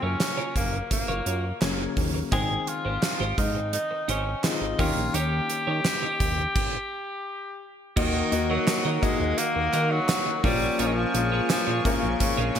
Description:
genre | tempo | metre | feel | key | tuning
1980s-style pop | 85 BPM | 4/4 | straight | unclear | A4 = 441 Hz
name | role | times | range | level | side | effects
clear tenor saxophone | melody | 0.0-12.6 s | Db3 to Ab4 | -28 LUFS | left 1 dB | ping-pong delay
clear concert grand piano | accompaniment | 0.0-12.6 s | Db3 to G5 | -31 LUFS | left 5 dB | none
twelve-string electric guitar | riff | 0.0-12.6 s | Eb4 to Eb5 | -34 LUFS | right 5 dB | analog chorus
fat analog bass | bass | 0.0-12.6 s | Gb1 to Eb3 | -29 LUFS | equal | none
gated 80s drum kit | drums | 0.2-12.6 s | crash cymbal, hi-hat, kick drum, snare drum, tambourine | -27 LUFS | right 1 dB | gated reverb
group handclap | percussion | 0.2-12.6 s | none | -41 LUFS | right 3 dB | none
chorused pulse-width pad | sustained chords | 8.0-12.6 s | Bb4 to Eb6 | -34 LUFS | equal | none
analog synth brass | stabs | 8.0-12.6 s | Eb3 to Ab5 | -35 LUFS | right 3 dB | none
room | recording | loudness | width
moderate plate reverb, RT60 2.7 s | bright 1980s-style digital production | -23 LUFS | side -8 dB against mid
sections
0.0-8.0 A section; 8.0-12.6 B section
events
stop 6.6-8.0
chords
0.0 Gbmaj7; 2.3 Abmaj7; 4.8 Eb7; 8.0 Ebm; 10.4 Bbm7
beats
0.20 0.91 1.62 | 2.32 3.03 3.73 4.44 | 5.15 5.85 6.56 7.26 | 7.97 8.68 9.38 10.09 | 10.79 11.50 12.21

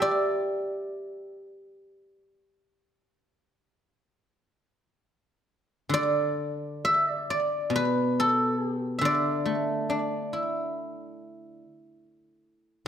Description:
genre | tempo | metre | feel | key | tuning
chinese traditional, Chinese solo plucked strings | 62-70 BPM | 4/4 | rubato | D zhi mode | A4 = 440 Hz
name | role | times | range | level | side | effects
guzheng | solo | 0.0-12.0 s | B2 to D6 | -25 LUFS | equal | slapback echo
room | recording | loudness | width
moderate recital hall reverb, RT60 1.7 s | none | -25 LUFS | side -9 dB against mid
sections
0.0-5.9 A section; 5.9-12.9 B section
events
none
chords
none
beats
0.46 1.34 | 2.23 3.12 4.03 4.98 | 5.92 6.82 7.71 8.59 | 9.46 10.32 11.18 12.04

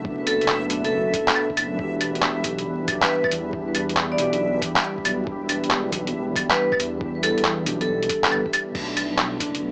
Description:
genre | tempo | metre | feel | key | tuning
future garage | 138 BPM | 4/4 | swing 67% on 16ths | E minor | A4 = 440 Hz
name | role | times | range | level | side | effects
muted felt-like synth keys | accompaniment | 0.0-9.7 s | B2 to G4 | -33 LUFS | equal | chorus, vintage 12-bit sampler grit, sidechain pumping, tape echo
deep dark ambient pad | sustained chords | 0.0-9.7 s | G3 to B4 | -34 LUFS | equal | chorus, built-in reverb, sidechain pumping
dark detuned saw bass | bass | 0.0-9.7 s | E1 to E2 | -33 LUFS | equal | sidechain pumping
electronic kick drum | drums | 0.0-9.5 s | none | -38 LUFS | equal | none
backwards swelling texture | texture | 0.0-8.8 s | E5 | -38 LUFS | equal | built-in reverb
vibraphone with hard mallets | melody | 0.3-8.4 s | A4 to D5 | -29 LUFS | equal | vintage 12-bit sampler grit, tape echo
lo-fi sampler-style drum kit | drums | 0.3-9.6 s | cabasa, claves, crash cymbal, handclaps, hi-hat | -25 LUFS | equal | none
room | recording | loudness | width
little or no reverb | dry, gritty hardware recording, vinyl crackle, small speaker sound | -23 LUFS | mono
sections
0.0-8.7 A section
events
none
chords
0.0 Bm7; 1.8 Em7; 8.7 Bm7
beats
| 0.05 0.49 0.92 1.36 | 1.79 2.23 2.66 3.10 | 3.53 3.97 4.40 4.83 | 5.27 5.71 6.14 6.58 | 7.01 7.44 7.88 8.31 | 8.75 9.18 9.62

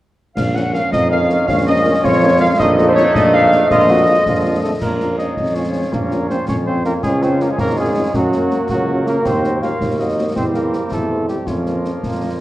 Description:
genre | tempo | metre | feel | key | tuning
military-style march for wind band | 108 BPM (dotted quarters) | 6/8 | straight | Bb minor | A4 = 437 Hz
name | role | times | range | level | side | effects
mellow cornet | melody | 0.4-12.4 s | F4 to Gb5 | -21 LUFS | equal | none
small flute group | second line | 0.4-4.8 s | C5 to Gb5 | -22 LUFS | left 2 dB | none
warm woodwind section | second line | 0.4-12.4 s | F4 to Gb5 | -25 LUFS | left 2 dB | none
clear trombone section | sustained chords | 0.4-12.4 s | F3 to Db4 | -25 LUFS | right 1 dB | none
clear tuba | bass | 0.4-12.4 s | Ab1 to Gb2 | -19 LUFS | right 1 dB | none
concert snare drum, clash cymbals and concert bass drum | drums | 0.4-12.4 s | none | -24 LUFS | left 1 dB | none
dark French horn section | accompaniment | 0.5-12.3 s | G3 to Bb4 | -26 LUFS | left 2 dB | none
clear euphonium | second line | 0.9-12.4 s | F3 to Gb4 | -21 LUFS | right 1 dB | none
room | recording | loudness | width
wet recital hall reverb, RT60 1.6 s | worn, warbling old tape, cassette tape, warbly pitch drift | -14 LUFS | side -15 dB against mid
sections
0.4-4.8 A section; 4.8-12.4 B section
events
none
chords
0.4 Bbm; 2.6 F7/Bb; 4.8 Bbm; 7.0 Db; 8.1 Gb; 9.3 Cm7b5/Eb; 10.4 C7/E; 11.5 Bbm/F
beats
| 0.37 0.93 | 1.48 2.04 | 2.59 3.15 | 3.70 4.26 | 4.81 5.37 | 5.92 6.48 | 7.03 7.59 | 8.14 8.70 | 9.25 9.81 | 10.36 10.92 | 11.47 12.03

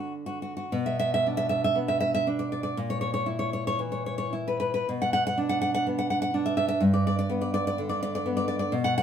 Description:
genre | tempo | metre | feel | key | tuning
romantic piece for solo classical guitar | 49-64 BPM | 2/4 | rubato | B minor | A4 = 439 Hz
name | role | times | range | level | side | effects
nylon-string guitar | solo | 0.0-9.0 s | G2 to F#5 | -25 LUFS | equal | none
room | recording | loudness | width
moderate studio reverb, RT60 0.8 s | band playing live in one room | -25 LUFS | side -8 dB against mid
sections
0.7-9.0 A section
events
none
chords
0.0 N.C.; 0.7 Bm; 2.8 A#dim; 4.9 Bm; 6.8 G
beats
| 0.71 1.77 | 2.77 3.78 | 4.86 5.86 | 6.83 7.80 | 8.75

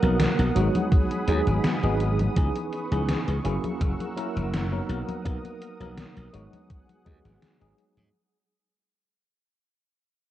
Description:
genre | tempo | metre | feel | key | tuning
vaporwave | 83 BPM | 4/4 | straight | unclear | A4 = 440 Hz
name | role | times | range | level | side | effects
tine electric piano | accompaniment | 0.0-8.1 s | E3 to A#4 | -28 LUFS | right 1 dB | overdrive, fast stereo tremolo, wide subtle chorus, analog delay
lush unison pad | sustained chords | 0.0-8.1 s | G#4 to E6 | -37 LUFS | equal | chorus
glassy slap bass | bass | 0.0-8.1 s | F#1 to G#2 | -26 LUFS | equal | none
gated 80s digital drum machine | drums | 0.0-8.1 s | congas, hi-hat, snare drum | -30 LUFS | equal | gated reverb, gated reverb snare
electronic kick drum | drums | 0.9-7.2 s | none | -23 LUFS | equal | overdrive
room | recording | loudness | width
light reverb, digital ambience | cassette tape | -23 LUFS | side -13 dB against mid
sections
0.0-8.1 A section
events
fade-out 0.4-8.1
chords
0.0 Bmaj7; 0.6 G#m7; 2.4 C#m9; 3.4 F#7; 4.9 Bmaj7; 6.3 G#m7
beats
0.20 0.92 1.64 | 2.36 3.09 3.81 4.53 | 5.25 5.98 6.70 7.42

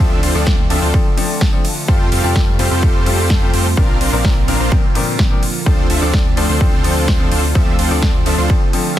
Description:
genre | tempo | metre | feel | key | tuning
EDM, festival progressive house | 127 BPM | 4/4 | straight | D minor | A4 = 440 Hz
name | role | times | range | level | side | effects
clear grand piano | accompaniment | 0.0-9.0 s | Bb2 to Bb4 | -22 LUFS | left 4 dB | sidechain pumping, dub echo
lush unison pad | sustained chords | 0.0-9.0 s | C3 to F4 | -24 LUFS | right 1 dB | chorus, phaser, sidechain pumping
dense compressed supersaw | riff | 0.0-8.5 s | C4 to F5 | -21 LUFS | right 1 dB | sidechain pumping, dub echo
saturated sub bass | bass | 0.0-8.5 s | Bb1 to F2 | -19 LUFS | equal | tube saturation, sidechain pumping
big-room dance drum kit | drums | 0.2-9.0 s | hi-hat, ride cymbal, snare drum | -23 LUFS | equal | overdrive
electronic kick drum | drums | 0.5-9.0 s | none | -14 LUFS | equal | overdrive
room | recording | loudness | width
little or no reverb | dense, heavily limited modern master | -12 LUFS | side -12 dB against mid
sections
0.0-9.0 A section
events
none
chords
0.0 Dm7; 1.9 Fadd9; 3.8 Bbadd9; 5.7 Dm7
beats
0.47 0.94 1.41 | 1.88 2.36 2.83 3.30 | 3.77 4.25 4.72 5.19 | 5.66 6.14 6.61 7.08 | 7.55 8.03 8.50 8.97

